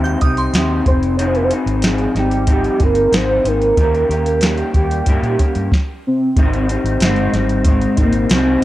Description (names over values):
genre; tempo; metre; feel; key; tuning
indie pop, bedroom pop; 93 BPM; 4/4; straight; Ab major; A4 = 439 Hz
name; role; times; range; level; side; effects
glassy synth bell; second line; 0.0-0.8 s; C6 to G6; -25 LUFS; right 3 dB; phaser, wide subtle chorus, analog delay
electric guitar through a small old amp; accompaniment; 0.0-8.6 s; Ab2 to Ab4; -19 LUFS; left 2 dB; analog chorus, vibrato effect, low-pass filter
vintage muted fingered electric bass; bass; 0.0-8.6 s; F1 to Bb2; -20 LUFS; equal; tube saturation
soft vintage rhythm box; drums; 0.1-8.5 s; hi-hat, kick drum, snare drum; -17 LUFS; equal; overdrive, vintage 12-bit sampler grit
soft octave-layered synth lead; melody; 0.9-8.6 s; G3 to Db5; -18 LUFS; right 1 dB; tremolo, ensemble chorus, low-pass filter, analog delay
room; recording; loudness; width
light reverb, digital ambience; dry, gritty hardware recording; -13 LUFS; side -15 dB against mid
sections
0.0-6.4 A section; 6.4-8.6 B section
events
none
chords
0.0 Abmaj7; 0.9 Fm7; 3.8 Eb7; 6.4 Abmaj7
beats
0.54 | 1.19 1.83 2.48 3.13 | 3.77 4.42 5.07 5.71 | 6.36 7.01 7.65 8.30